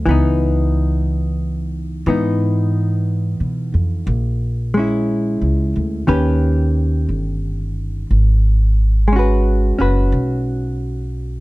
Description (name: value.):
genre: jazz ballad.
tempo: 60 BPM.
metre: 4/4.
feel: swing 67% on 8ths.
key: unclear.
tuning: A4 = 440 Hz.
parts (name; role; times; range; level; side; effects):
hollow-body jazz guitar; accompaniment; 0.0-11.4 s; D#3 to B4; -20 LUFS; equal; none.
upright bass; bass; 0.0-11.4 s; F#1 to B2; -17 LUFS; equal; none.
room: little or no reverb.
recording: close, detailed microphones.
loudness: -16 LUFS.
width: side -20 dB against mid.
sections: 0.0-11.4 A section.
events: none.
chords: 0.1 C#m9; 4.1 A#m7b5; 6.1 D#7b13; 8.1 G#m7.